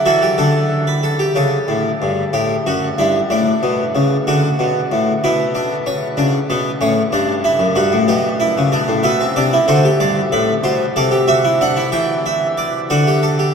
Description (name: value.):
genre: classical, baroque-style 3-part fugue for harpsichord.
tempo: 62 BPM (dotted quarters).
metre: 12/8.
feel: straight.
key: unclear.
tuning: A4 = 440 Hz.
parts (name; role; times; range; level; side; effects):
harpsichord; solo; 0.0-13.5 s; F#2 to G5; -14 LUFS; equal; none.
room: wet cathedral reverb, RT60 7.5 s.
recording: in a vast, echoing space.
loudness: -14 LUFS.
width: side -6 dB against mid.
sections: 0.0-1.4 A section; 1.4-13.5 B section.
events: none.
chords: 0.0 D; 1.4 A7; 3.3 D/A; 5.2 Bm; 7.1 Em7; 9.0 G/B; 11.0 C; 12.9 D.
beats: 0.40 | 1.38 2.35 3.31 4.28 | 5.24 6.18 7.13 8.08 | 9.04 10.00 10.96 11.93 | 12.91.